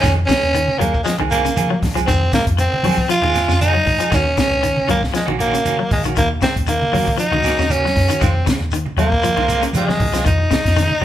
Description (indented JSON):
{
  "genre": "afrobeat",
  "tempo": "117 BPM",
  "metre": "4/4",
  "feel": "swing 54% on 16ths",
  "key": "unclear",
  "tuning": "A4 = 440 Hz",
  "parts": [
    { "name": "breathy tenor saxophone", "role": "melody", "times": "0.0-11.0 s", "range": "Ab3 to F4", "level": "-18 LUFS", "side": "equal", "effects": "none" },
    { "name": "clean electric guitar", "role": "arpeggios", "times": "0.0-11.0 s", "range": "Ab2 to Gb3", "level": "-24 LUFS", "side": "left 4 dB", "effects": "none" },
    { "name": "clean electric guitar", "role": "stabs", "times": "0.0-11.0 s", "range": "Eb3 to Ab4", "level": "-25 LUFS", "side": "right 6 dB", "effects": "tremolo" },
    { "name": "hollow-body short-scale fingered electric bass", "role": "bass", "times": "0.0-11.0 s", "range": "Bb1 to F3", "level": "-21 LUFS", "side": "equal", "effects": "none" },
    { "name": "compact cocktail drum kit", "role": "drums", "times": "0.0-10.9 s", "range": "hi-hat, kick drum, snare drum", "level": "-22 LUFS", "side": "equal", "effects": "none" },
    { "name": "congas", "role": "percussion", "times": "0.0-11.0 s", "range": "none", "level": "-27 LUFS", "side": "right 2 dB", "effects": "none" },
    { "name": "shekere", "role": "percussion", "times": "0.0-10.9 s", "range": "none", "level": "-30 LUFS", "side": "right 1 dB", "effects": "none" }
  ],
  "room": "moderate large studio reverb, RT60 1.1 s",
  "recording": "band playing live in one room",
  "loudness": "-14 LUFS",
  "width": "side -12 dB against mid",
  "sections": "0.0-11.0 A section",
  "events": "none",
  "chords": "0.0 Fm7; 4.1 Ebm7; 8.2 Fm7"
}